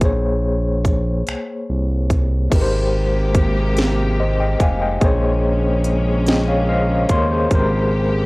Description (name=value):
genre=slow six-eight R&B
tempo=48 BPM (dotted quarters)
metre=6/8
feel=straight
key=Ab major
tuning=A4 = 440 Hz
part: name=overdriven tine electric piano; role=accompaniment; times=0.0-8.3 s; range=Ab3 to C6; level=-21 LUFS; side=left 2 dB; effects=medium tremolo
part: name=smooth gliding synth bass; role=bass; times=0.0-8.3 s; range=F1 to Eb2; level=-19 LUFS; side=equal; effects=none
part: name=drum and bass drum kit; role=drums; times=0.0-7.7 s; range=crash cymbal, finger snaps, hi-hat, kick drum, snare drum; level=-19 LUFS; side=equal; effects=overdrive
part: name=clear studio string section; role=sustained chords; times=2.5-8.3 s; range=C3 to G4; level=-26 LUFS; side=equal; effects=none
room=light reverb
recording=home recording on cassette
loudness=-16 LUFS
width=side -23 dB against mid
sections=0.0-2.5 A section; 2.5-8.3 B section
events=tine electric piano fill 6.3-7.5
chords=0.0 Bbm9; 2.5 Abmaj9; 5.0 Bbm9; 7.5 Abmaj9